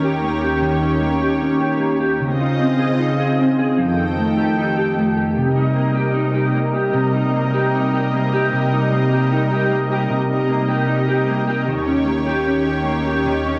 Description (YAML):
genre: dream pop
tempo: 76 BPM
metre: 4/4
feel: straight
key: unclear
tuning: A4 = 440 Hz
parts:
  - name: lush unison pad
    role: sustained chords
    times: 0.0-13.6 s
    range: Eb2 to G5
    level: -24 LUFS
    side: equal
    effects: chorus
  - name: mellow electric guitar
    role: arpeggios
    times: 0.0-13.6 s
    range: C3 to Ab4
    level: -20 LUFS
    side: equal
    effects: ensemble chorus, tape echo
  - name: twinkling granular texture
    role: texture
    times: 0.0-3.3 s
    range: Bb4 to Eb5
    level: -39 LUFS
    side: equal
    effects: none
room: wet recital hall reverb, RT60 1.8 s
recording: worn, warbling old tape, cassette tape, warbly pitch drift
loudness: -19 LUFS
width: mono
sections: 0.0-5.4 A section; 5.4-13.6 B section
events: none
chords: 0.0 Eb7; 2.2 Dbmaj9; 3.8 F9; 5.4 Cm7; 11.7 Eb7